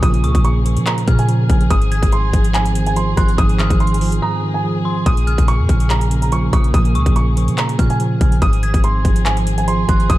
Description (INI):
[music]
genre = hip hop, trap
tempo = 143 BPM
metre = 4/4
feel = half-time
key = Bb minor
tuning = A4 = 439 Hz
[part]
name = dark concert grand piano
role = melody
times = 0.0-10.2 s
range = Ab5 to Eb6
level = -23 LUFS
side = right 3 dB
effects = ping-pong delay
[part]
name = mellow tine electric piano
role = accompaniment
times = 0.0-10.2 s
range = Ab2 to F3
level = -20 LUFS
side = right 2 dB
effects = none
[part]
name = dark chamber string section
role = sustained chords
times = 0.0-10.2 s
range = Db3 to Ab4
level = -26 LUFS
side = left 2 dB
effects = none
[part]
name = warm 808-style bass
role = bass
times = 0.0-10.2 s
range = Ab1 to F3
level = -17 LUFS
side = equal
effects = none
[part]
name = trap drum kit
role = drums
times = 0.0-10.2 s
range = handclaps, hi-hat, kick drum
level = -17 LUFS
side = equal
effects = overdrive
[part]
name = dark detuned synth bell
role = second line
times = 0.2-10.1 s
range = C6 to Ab6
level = -30 LUFS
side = left 3 dB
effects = chorus, ping-pong delay
[sound]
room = little or no reverb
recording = dark, warm production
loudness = -13 LUFS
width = side -16 dB against mid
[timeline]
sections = 0.0-10.2 A section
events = break 4.2-5.1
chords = 0.0 Bbm7; 1.7 Ab6; 5.1 Bbm7; 8.4 Ab6